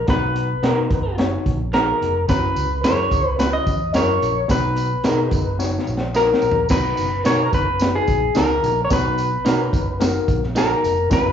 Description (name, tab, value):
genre	uptempo 1960s-style soul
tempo	109 BPM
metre	4/4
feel	straight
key	B major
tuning	A4 = 443 Hz
part	electric guitar through a small old amp	melody	0.0-11.3 s	G#4 to D#5	-21 LUFS	left 1 dB	slapback echo
part	fingered electric bass	bass	0.0-11.3 s	E#1 to B2	-24 LUFS	right 1 dB	none
part	tine electric piano	accompaniment	0.1-11.3 s	B2 to A#5	-25 LUFS	left 4 dB	overdrive, medium stereo tremolo, slapback echo
part	crunchy breakbeat drum kit	drums	0.1-11.2 s	crash cymbal, hi-hat, kick drum, snare drum, toms	-22 LUFS	right 1 dB	none
part	electric guitar through a small old amp	stabs	0.6-10.7 s	B3 to A#4	-26 LUFS	right 2 dB	spring reverb, slapback echo
part	tambourine	percussion	2.3-11.2 s	none	-37 LUFS	right 3 dB	none
room	light reverb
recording	live gig heard through the venue's PA, club reverb, nothing above 7.8 kHz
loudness	-17 LUFS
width	side -8 dB against mid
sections	0.0-6.7 A section; 6.7-11.3 A section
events	drum fill 5.6-6.7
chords	0.0 Bmaj7; 2.3 F#7; 4.5 Bmaj7